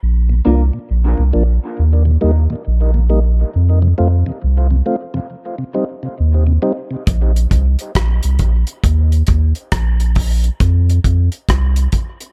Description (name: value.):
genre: dub reggae.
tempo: 68 BPM.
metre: 4/4.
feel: swing 64% on 16ths.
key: Bb major.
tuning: A4 = 440 Hz.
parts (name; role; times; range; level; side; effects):
warm sub bass; bass; 0.0-11.9 s; Bb1 to F2; -15 LUFS; equal; none.
mellow tonewheel organ; accompaniment; 0.3-7.0 s; Eb2 to F4; -24 LUFS; equal; slow rotary speaker, dub echo.
mellow electric guitar; accompaniment; 0.5-0.6 s; Bb3 to Bb4; -24 LUFS; equal; phaser, dub echo.
damped 70s drum kit; drums; 7.1-12.3 s; hi-hat, kick drum, rim click; -20 LUFS; equal; none.
room: studio reverb.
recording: echo-heavy mix.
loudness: -15 LUFS.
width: mono.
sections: 0.0-12.3 A section.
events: break 0.0-12.3.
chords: 0.0 Bb; 1.8 Eb; 3.5 F; 5.3 Cm; 7.1 Bbsus2; 8.8 Eb5; 10.6 F5.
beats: | 0.02 0.90 1.78 2.66 | 3.54 4.43 5.31 6.19 | 7.07 7.96 8.84 9.72 | 10.61 11.49.